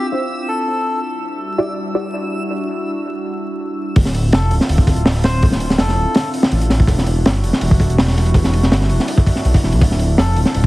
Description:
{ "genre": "drum and bass, jungle", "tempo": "164 BPM", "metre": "4/4", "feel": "straight", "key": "unclear", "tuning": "A4 = 440 Hz", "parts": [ { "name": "melodica", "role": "melody", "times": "0.0-1.0, 4.3-6.3, 10.2-10.4 s", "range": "A4 to C5", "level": "-24 LUFS", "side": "left 1 dB", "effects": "vintage 12-bit sampler grit, dub echo" }, { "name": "warbly tape-like pad", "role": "sustained chords", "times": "0.0-10.7 s", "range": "G3 to F#4", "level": "-24 LUFS", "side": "equal", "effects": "chorus, built-in reverb" }, { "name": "backwards swelling texture", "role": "texture", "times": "0.0-4.0 s", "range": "E6", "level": "-31 LUFS", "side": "right 1 dB", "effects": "built-in reverb" }, { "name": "filtered dub chord stab", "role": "stabs", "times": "0.1-2.0 s", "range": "D4 to D5", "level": "-24 LUFS", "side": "equal", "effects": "phaser, lush chorus, vintage 12-bit sampler grit, dub echo" }, { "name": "dark detuned saw bass", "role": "bass", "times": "4.0-10.7 s", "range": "D1 to B1", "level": "-16 LUFS", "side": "equal", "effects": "none" }, { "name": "crunchy breakbeat drum kit", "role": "drums", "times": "4.0-10.7 s", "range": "hi-hat, kick drum, snare drum", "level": "-15 LUFS", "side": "equal", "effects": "none" } ], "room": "light reverb, small room ambience", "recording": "heavily compressed radio sound, multiband compression, vinyl crackle", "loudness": "-14 LUFS", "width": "side -19 dB against mid", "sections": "0.0-4.0 A section; 4.0-10.7 B section", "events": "filter sweep on ambient pad 0.0-4.0; drop 4.0-10.7", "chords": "0.0 Dm9; 1.0 Em9; 4.0 Dm9; 6.9 Em9; 9.8 Dm9", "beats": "0.30 0.67 | 1.03 1.40 1.77 2.13 | 2.50 2.86 3.23 3.60 | 3.96 4.33 4.69 5.06 | 5.42 5.79 6.16 6.52 | 6.89 7.25 7.62 7.99 | 8.35 8.72 9.08 9.45 | 9.81 10.18 10.55" }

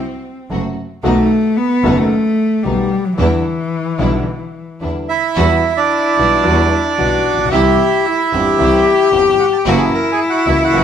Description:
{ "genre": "tango", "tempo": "112 BPM", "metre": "4/4", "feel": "rubato", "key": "E minor", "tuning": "A4 = 440 Hz", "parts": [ { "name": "warm cello", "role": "second line", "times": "0.0-10.8 s", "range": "E3 to G4", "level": "-16 LUFS", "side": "left 3 dB", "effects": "none" }, { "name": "warm grand piano", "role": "accompaniment", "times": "0.5-10.8 s", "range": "F#1 to G4", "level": "-20 LUFS", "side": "left 2 dB", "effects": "none" }, { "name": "rich studio string section", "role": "stabs", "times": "0.5-10.8 s", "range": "G3 to G4", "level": "-24 LUFS", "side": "right 3 dB", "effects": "none" }, { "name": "clear double bass", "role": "bass", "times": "0.5-10.8 s", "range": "F#1 to E2", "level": "-19 LUFS", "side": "right 1 dB", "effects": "none" }, { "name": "bandoneon", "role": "melody", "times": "5.1-10.8 s", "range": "D4 to A#5", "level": "-15 LUFS", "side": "right 6 dB", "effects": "none" } ], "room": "moderate stone room reverb, RT60 1.1 s", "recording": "band playing live in one room", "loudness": "-12 LUFS", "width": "side -8 dB against mid", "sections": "0.0-5.4 A section; 5.4-10.8 B section", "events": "cello solo 0.0-5.4", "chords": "0.0 F#dim; 1.0 B7; 3.2 Em7; 5.4 Emadd9; 7.5 C; 9.7 F#7", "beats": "0.51 | 1.04 1.57 2.10 2.64 | 3.18 3.72 4.26 4.81 | 5.36 5.91 6.45 6.99 | 7.53 8.06 8.60 9.13 | 9.66 10.20 10.74" }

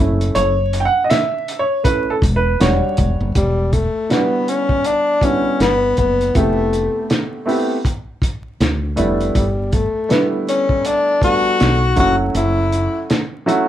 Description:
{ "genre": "hip hop, jazz-hop", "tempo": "80 BPM", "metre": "4/4", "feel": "swing 60% on 16ths", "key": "E dorian", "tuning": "A4 = 439 Hz", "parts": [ { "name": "warm upright piano", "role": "accompaniment", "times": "0.0-13.7 s", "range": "D3 to G5", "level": "-19 LUFS", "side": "right 2 dB", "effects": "none" }, { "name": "woody fretless electric bass", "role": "bass", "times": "0.0-12.9 s", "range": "E1 to D2", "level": "-19 LUFS", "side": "equal", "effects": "none" }, { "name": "cloth-damped thuddy drum kit", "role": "drums", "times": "0.2-13.7 s", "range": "hi-hat, kick drum, snare drum", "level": "-20 LUFS", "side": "equal", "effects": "none" }, { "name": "breathy tenor saxophone", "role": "melody", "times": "3.4-13.1 s", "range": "G3 to F#4", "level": "-17 LUFS", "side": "left 2 dB", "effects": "none" } ], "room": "moderate small room reverb, RT60 0.6 s", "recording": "band playing live in one room, vinyl crackle", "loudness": "-15 LUFS", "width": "side -11 dB against mid", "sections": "0.0-3.4 A section; 3.4-13.7 B section", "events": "upright piano solo 0.0-3.4", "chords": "0.0 F#m7; 2.6 Em9; 3.4 Em7; 6.4 Fmaj9#11; 8.6 Dm; 9.4 G69; 12.0 F#m7", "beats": "| 0.35 1.10 1.85 2.60 | 3.35 4.10 4.85 5.60 | 6.35 7.10 7.85 8.60 | 9.35 10.10 10.85 11.60 | 12.35 13.10" }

